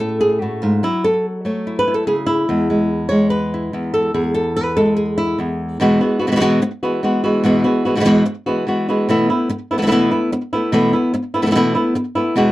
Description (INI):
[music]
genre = flamenco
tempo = 146 BPM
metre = 4/4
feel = straight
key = E major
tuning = A4 = 441 Hz
[part]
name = flamenco guitar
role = solo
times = 0.0-12.5 s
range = E2 to C#5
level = -15 LUFS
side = equal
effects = slapback echo
[sound]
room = light reverb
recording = dry, close 1970s-style studio recording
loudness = -15 LUFS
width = side -16 dB against mid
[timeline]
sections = 0.0-5.8 A section; 5.8-12.5 B section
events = nylon-string guitar solo 0.0-5.8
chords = 0.0 A; 0.8 F#m7; 2.5 E; 5.8 Eadd9; 9.1 B7sus4